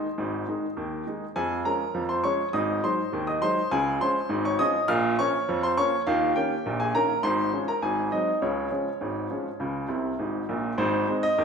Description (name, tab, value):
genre	ragtime piano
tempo	102 BPM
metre	2/4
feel	straight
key	Db major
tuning	A4 = 440 Hz
part	clear baby grand piano	solo	0.0-11.4 s	Ab1 to F6	-24 LUFS	equal	none
room	wet large studio reverb, RT60 1.3 s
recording	band playing live in one room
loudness	-24 LUFS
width	side -6 dB against mid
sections	0.0-10.8 A section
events	grand piano fill 9.9-10.8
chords	0.0 Ab; 1.4 Db/F; 2.5 Ab7; 3.7 Db; 4.9 Bbm; 6.1 Eb7; 7.2 Db/Ab; 7.8 Ab7; 8.4 Db; 10.8 Ab